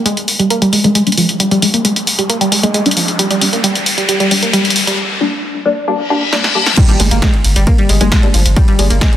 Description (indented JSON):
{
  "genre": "driving peak-time techno",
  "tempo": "134 BPM",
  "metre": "4/4",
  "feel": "straight",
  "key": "G phrygian",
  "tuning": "A4 = 440 Hz",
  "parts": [
    { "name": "riser, reverse cymbal and impact", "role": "sound effects", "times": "1.2-8.6 s", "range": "none", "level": "-20 LUFS", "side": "left 2 dB", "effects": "none" },
    { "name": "analog pluck", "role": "riff", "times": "0.1-9.1 s", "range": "F3 to Bb3", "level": "-15 LUFS", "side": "equal", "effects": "chorus, phaser, cassette tape, sidechain pumping, tape echo" },
    { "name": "punchy analog drum machine", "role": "drums", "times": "0.1-9.2 s", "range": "crash cymbal, hi-hat, ride cymbal, snare drum", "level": "-15 LUFS", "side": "equal", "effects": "none" },
    { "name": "filtered dub chord stab", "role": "stabs", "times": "0.8-8.9 s", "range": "G3 to D4", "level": "-18 LUFS", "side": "left 2 dB", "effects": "phaser, lush chorus, sidechain pumping, tape echo" },
    { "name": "electronic kick drum", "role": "drums", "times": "6.8-9.1 s", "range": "none", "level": "-11 LUFS", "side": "equal", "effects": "none" },
    { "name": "saturated sub bass", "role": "bass", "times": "7.0-9.0 s", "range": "G1", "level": "-12 LUFS", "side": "equal", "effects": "overdrive, sidechain pumping, low-pass filter" }
  ],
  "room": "moderate plate reverb, RT60 1.6 s, digital ambience",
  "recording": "dense, heavily limited modern master, high-pass filter",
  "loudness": "-10 LUFS",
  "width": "side -11 dB against mid",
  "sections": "0.0-6.8 A section; 6.8-9.2 B section",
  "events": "build-up 0.0-6.8; filter sweep on synth arpeggio sound 0.0-6.8; filter sweep on synth stab 0.0-6.8; riser 1.2-5.0; break 5.0-6.8; reverse cymbal 6.0-6.8; drum fill 6.3-6.8; drop 6.8-9.2; impact 6.8-8.6",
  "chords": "0.0 Gm"
}